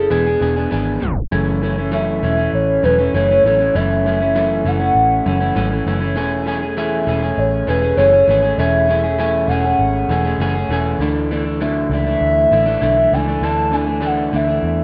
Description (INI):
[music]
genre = indie pop, bedroom pop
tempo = 99 BPM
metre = 4/4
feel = straight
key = A major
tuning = A4 = 440 Hz
[part]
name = hollow clarinet-like synth lead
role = melody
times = 0.0-14.8 s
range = G#4 to A5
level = -19 LUFS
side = equal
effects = lush chorus, analog delay
[part]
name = electric guitar through a small old amp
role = accompaniment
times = 0.0-14.8 s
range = F#2 to A4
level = -22 LUFS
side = equal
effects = subtle chorus, warbly pitch drift
[part]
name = vintage muted picked electric bass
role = bass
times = 0.0-14.8 s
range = E1 to E2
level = -23 LUFS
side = equal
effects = none
[sound]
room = light reverb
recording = rough home demo mix, tape stop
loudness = -17 LUFS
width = mono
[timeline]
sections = 0.0-1.3 A section; 1.3-14.8 B section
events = tape stop 1.0-1.3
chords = 0.1 E7; 1.3 Amaj7/E; 11.0 Dsus2